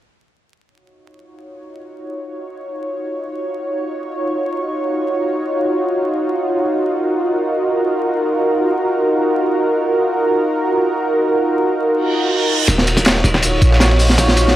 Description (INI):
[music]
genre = drum and bass, jungle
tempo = free time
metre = none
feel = none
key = Eb minor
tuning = A4 = 440 Hz
[part]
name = lush unison pad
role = sustained chords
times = 1.8-14.6 s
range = Eb4 to Db5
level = -17 LUFS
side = right 1 dB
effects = chorus, vintage 12-bit sampler grit
[part]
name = reverse cymbal and riser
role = sound effects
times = 12.1-14.6 s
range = none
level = -22 LUFS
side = right 5 dB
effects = none
[part]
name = warm 808-style bass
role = bass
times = 12.7-14.6 s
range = Eb1 to Bb1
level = -15 LUFS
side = equal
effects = none
[part]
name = crunchy breakbeat drum kit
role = drums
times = 12.7-14.6 s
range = hi-hat, kick drum, ride cymbal, snare drum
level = -15 LUFS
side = equal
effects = high-pass filter on kick, high-pass filter on cymbals, high-pass filter on hats, high-pass filter on snare, high-pass filter on room
[part]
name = dusty soul sampler-style drum kit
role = drums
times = 12.7-14.5 s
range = hi-hat, snare drum, tambourine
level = -20 LUFS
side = equal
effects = high-pass filter on perc, high-pass filter on hats, high-pass filter on snare
[sound]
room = light reverb, small room ambience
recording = dry, gritty hardware recording, vinyl crackle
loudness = -15 LUFS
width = side -13 dB against mid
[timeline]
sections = 0.7-12.7 A section; 12.7-14.6 B section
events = reverse cymbal 12.1-12.7; build-up 12.7-14.6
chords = 0.7 Ebm9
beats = free time